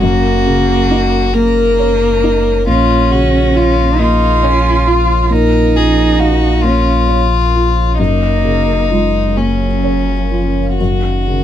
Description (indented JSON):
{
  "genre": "neoclassical piano and strings",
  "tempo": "45 BPM (dotted quarters)",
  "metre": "6/8",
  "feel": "uneven beats, rubato",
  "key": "Bb minor",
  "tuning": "A4 = 438 Hz",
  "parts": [
    { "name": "rich violin", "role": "melody", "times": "0.0-11.4 s", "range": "Db4 to Bb4", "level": "-16 LUFS", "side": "left 6 dB", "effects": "none" },
    { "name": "dark cello", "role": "second line", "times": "0.0-11.4 s", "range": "Eb3 to F4", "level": "-17 LUFS", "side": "right 6 dB", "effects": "none" },
    { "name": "felt-muted upright piano", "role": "accompaniment", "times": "0.0-11.4 s", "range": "Gb2 to F5", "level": "-18 LUFS", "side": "equal", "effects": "none" },
    { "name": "granular cloud pad", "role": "sustained chords", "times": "0.0-11.4 s", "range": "Db4 to F5", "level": "-26 LUFS", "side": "left 1 dB", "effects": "none" },
    { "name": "punchy sub bass", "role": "bass", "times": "0.0-11.4 s", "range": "Gb1 to Bb1", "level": "-16 LUFS", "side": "equal", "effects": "none" }
  ],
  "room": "little or no reverb",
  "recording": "close, detailed microphones",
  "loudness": "-10 LUFS",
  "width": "side -10 dB against mid",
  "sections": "0.0-11.4 A section",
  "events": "none",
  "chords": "0.0 Ebm7/Gb; 2.7 Bbm; 8.0 Gbmaj7; 10.8 Ebm7/Gb"
}